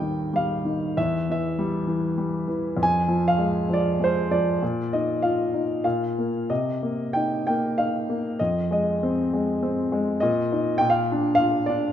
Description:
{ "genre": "classical, lyrical solo piano", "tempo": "99 BPM", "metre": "3/4", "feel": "rubato", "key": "unclear", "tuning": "A4 = 439 Hz", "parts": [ { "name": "warm grand piano", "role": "solo", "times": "0.0-11.9 s", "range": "Eb2 to Ab5", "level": "-21 LUFS", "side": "equal", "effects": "none" } ], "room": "moderate scoring stage reverb, RT60 1.6 s", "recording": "minimal, uncompressed stereo recording", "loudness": "-21 LUFS", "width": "side -10 dB against mid", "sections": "0.0-11.9 A section", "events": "none", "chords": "0.0 Eb; 1.0 Em; 2.8 Fm; 4.6 Bbsus4; 5.8 N.C.; 6.5 Cm7; 8.4 Fm7; 10.2 Bbsus4; 10.8 Bb" }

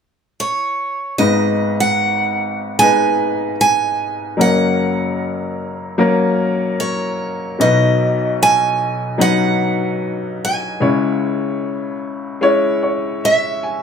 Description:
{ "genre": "folk", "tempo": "75 BPM", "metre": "4/4", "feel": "straight", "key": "G# minor", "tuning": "A4 = 440 Hz", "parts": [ { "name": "picked steel-string acoustic guitar", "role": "melody", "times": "0.4-13.8 s", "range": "C#5 to G#5", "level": "-17 LUFS", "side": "right 3 dB", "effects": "plate reverb" }, { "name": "bright upright piano", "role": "accompaniment", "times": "1.2-13.8 s", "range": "F#1 to G#5", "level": "-17 LUFS", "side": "left 2 dB", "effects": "none" } ], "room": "wet studio ambience, RT60 0.4 s", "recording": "heard from further back in the room", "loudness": "-15 LUFS", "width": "side -6 dB against mid", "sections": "0.0-1.2 A section; 1.2-13.8 B section", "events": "none", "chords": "0.0 N.C.; 1.2 G#m; 4.4 F#; 7.6 B; 10.8 C#m" }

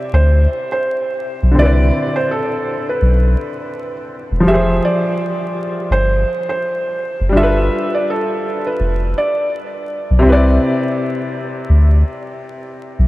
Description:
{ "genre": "lo-fi hip hop", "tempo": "83 BPM", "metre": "4/4", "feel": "swing 60% on 16ths", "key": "C major", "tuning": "A4 = 440 Hz", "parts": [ { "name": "felt-muted upright piano", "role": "melody", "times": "0.0-9.5 s", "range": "A4 to E5", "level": "-20 LUFS", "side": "right 1 dB", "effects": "low-pass filter, analog delay" }, { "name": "warm upright piano", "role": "accompaniment", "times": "0.0-13.1 s", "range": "C3 to D5", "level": "-19 LUFS", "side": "left 1 dB", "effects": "low-pass filter" }, { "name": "soft dub sub bass", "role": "bass", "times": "0.1-13.1 s", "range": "E1 to D2", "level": "-12 LUFS", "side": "equal", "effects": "none" } ], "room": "moderate huge ambient reverb, RT60 7.9 s", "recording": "dreamy mix soaked in reverb, vinyl crackle", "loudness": "-14 LUFS", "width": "side -18 dB against mid", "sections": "0.0-13.1 A section", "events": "none", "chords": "0.0 Cmaj9; 4.5 Fmadd9; 7.4 G7; 10.2 Cmaj9" }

